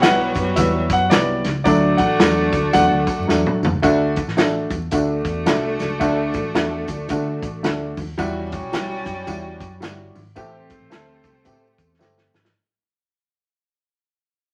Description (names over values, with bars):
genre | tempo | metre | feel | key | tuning
uptempo 1960s-style soul | 110 BPM | 4/4 | swing 61% on 8ths | D major | A4 = 440 Hz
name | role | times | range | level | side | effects
warm grand piano | melody | 0.0-3.6 s | D5 to F#5 | -23 LUFS | equal | none
dark horn section | second line | 0.0-12.3 s | F#3 to D5 | -27 LUFS | equal | none
warm upright piano | accompaniment | 0.0-12.3 s | F#3 to A4 | -24 LUFS | equal | none
vintage muted fingered electric bass | bass | 0.0-12.5 s | G1 to D3 | -30 LUFS | equal | none
warm soul drum kit | drums | 0.0-12.5 s | hi-hat, kick drum, snare drum, toms | -24 LUFS | equal | none
congas | percussion | 0.0-12.4 s | none | -33 LUFS | equal | none
tambourine | percussion | 0.0-12.4 s | none | -44 LUFS | equal | none
room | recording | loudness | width
wet studio reverb, RT60 0.8 s | vinyl crackle | -19 LUFS | mono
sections
0.0-3.8 A section; 3.8-12.5 B section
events
drum fill 3.3-3.8, 12.0-12.5; fade-out 3.8-12.5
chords
0.0 Emadd9; 1.7 D; 8.2 Emadd9; 10.4 Am7